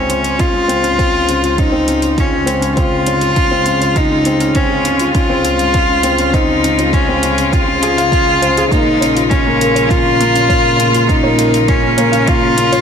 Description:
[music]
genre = piano and strings electronica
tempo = 101 BPM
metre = 4/4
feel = straight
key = Db major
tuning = A4 = 440 Hz
[part]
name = warm cello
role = melody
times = 0.0-12.8 s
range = Db4 to F4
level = -14 LUFS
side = left 1 dB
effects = shimmer reverb
[part]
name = dark string quartet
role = sustained chords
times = 0.0-12.8 s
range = Db3 to C5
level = -22 LUFS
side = left 2 dB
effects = sidechain pumping, low-pass filter, shimmer reverb
[part]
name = felt-muted upright piano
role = riff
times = 0.0-12.8 s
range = Bb3 to F5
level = -17 LUFS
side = left 1 dB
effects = ping-pong delay, shimmer reverb
[part]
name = clear studio double bass section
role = bass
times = 0.0-12.8 s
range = Bb1 to Db2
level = -22 LUFS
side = right 1 dB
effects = sidechain pumping
[part]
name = warbly dusty pluck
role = arpeggios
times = 0.1-12.8 s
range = Ab4 to Db6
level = -28 LUFS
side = right 4 dB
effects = none
[part]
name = electronic hi-hat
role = drums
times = 0.1-12.8 s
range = none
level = -24 LUFS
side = right 1 dB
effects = overdrive, studio reverb
[part]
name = electronic kick drum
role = drums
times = 0.4-12.4 s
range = none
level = -16 LUFS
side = right 1 dB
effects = overdrive, studio reverb
[sound]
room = moderate echo chamber reverb, RT60 2.0 s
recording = none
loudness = -11 LUFS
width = side -7 dB against mid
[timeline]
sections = 0.0-12.8 A section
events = build-up 0.0-12.8; filter sweep on string quartet 0.0-12.8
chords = 0.0 Dbmaj7; 8.7 Bbm7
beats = 0.40 0.99 | 1.59 2.18 2.78 3.37 | 3.96 4.56 5.15 5.75 | 6.34 6.93 7.53 8.12 | 8.72 9.31 9.90 10.50 | 11.09 11.69 12.28

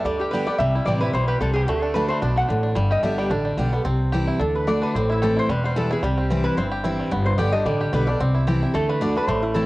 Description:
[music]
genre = bluegrass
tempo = 221 BPM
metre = 4/4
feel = swing 54% on 8ths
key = G major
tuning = A4 = 440 Hz
[part]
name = bluegrass banjo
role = melody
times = 0.0-9.7 s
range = D3 to G4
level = -28 LUFS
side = right 1 dB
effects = cassette tape
[part]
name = lap resonator guitar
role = melody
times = 0.0-9.7 s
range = E4 to G5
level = -26 LUFS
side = left 1 dB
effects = cassette tape
[part]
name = picked steel-string acoustic guitar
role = accompaniment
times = 0.0-9.7 s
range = E2 to G4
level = -23 LUFS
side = equal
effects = none
[part]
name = upright bass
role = bass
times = 0.0-9.7 s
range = E1 to D2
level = -24 LUFS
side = equal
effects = none
[sound]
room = light reverb, small room ambience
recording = home recording on cassette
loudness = -19 LUFS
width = side -19 dB against mid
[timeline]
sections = 0.0-3.9 A section; 3.9-9.7 B section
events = none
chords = 0.0 G; 0.6 C; 1.7 D; 2.8 G; 3.9 C; 4.4 D; 4.9 Am; 5.5 Em; 6.0 C; 7.1 G; 8.2 C; 8.7 D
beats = 0.05 0.32 | 0.59 0.87 1.14 1.41 | 1.68 1.95 2.23 2.50 | 2.77 3.04 3.31 3.58 | 3.86 4.13 4.40 4.67 | 4.94 5.21 5.49 5.76 | 6.03 6.30 6.57 6.84 | 7.12 7.39 7.66 7.93 | 8.20 8.47 8.74 9.01 | 9.29 9.56

